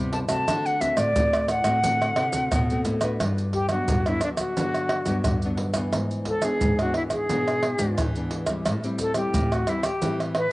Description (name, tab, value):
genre	samba and choro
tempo	88 BPM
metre	4/4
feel	straight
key	G major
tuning	A4 = 440 Hz
part	nylon-string guitar	accompaniment	0.0-10.5 s	G2 to B4	-31 LUFS	left 1 dB	cassette tape
part	nylon-string guitar	bass	0.0-10.5 s	G2 to E3	-28 LUFS	equal	none
part	silver concert flute	melody	0.1-10.5 s	D4 to A5	-25 LUFS	left 1 dB	none
part	pandeiro, maracas, surdo and tamborim	percussion	0.1-10.5 s	none	-27 LUFS	right 1 dB	none
room	moderate spring reverb, RT60 2.0 s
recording	home recording on cassette, nothing above 10.3 kHz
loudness	-22 LUFS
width	side -19 dB against mid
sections	0.0-3.2 A section; 3.2-10.5 B section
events	none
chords	0.5 D7; 3.2 Gmaj7; 5.9 E7/G#; 8.7 Am7